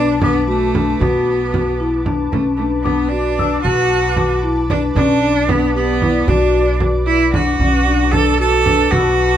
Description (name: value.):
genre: contemporary instrumental, chamber music in an uneven meter.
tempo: 227 BPM (eighths).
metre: 5/8.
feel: straight.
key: B minor.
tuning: A4 = 440 Hz.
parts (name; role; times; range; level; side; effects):
bright cello; melody; 0.0-9.4 s; A3 to A4; -18 LUFS; right 5 dB; none.
ethereal airy pad; sustained chords; 0.0-9.4 s; B4 to D6; -25 LUFS; equal; ensemble chorus, built-in reverb.
vibraphone with soft mallets; arpeggios; 0.0-9.3 s; C#4 to G4; -18 LUFS; left 4 dB; none.
upright bass; bass; 0.0-9.4 s; B1; -20 LUFS; right 1 dB; none.
frame drum; percussion; 0.2-9.2 s; none; -22 LUFS; right 2 dB; none.
celesta; texture; 0.2-5.0, 9.0-9.4 s; D6 to E6; -28 LUFS; left 11 dB; none.
room: light reverb.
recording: close, detailed microphones.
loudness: -13 LUFS.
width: side -10 dB against mid.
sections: 0.0-2.3 A section; 2.3-9.4 B section.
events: none.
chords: 0.0 Bm7; 5.0 G/B (rootless); 7.6 Bm7.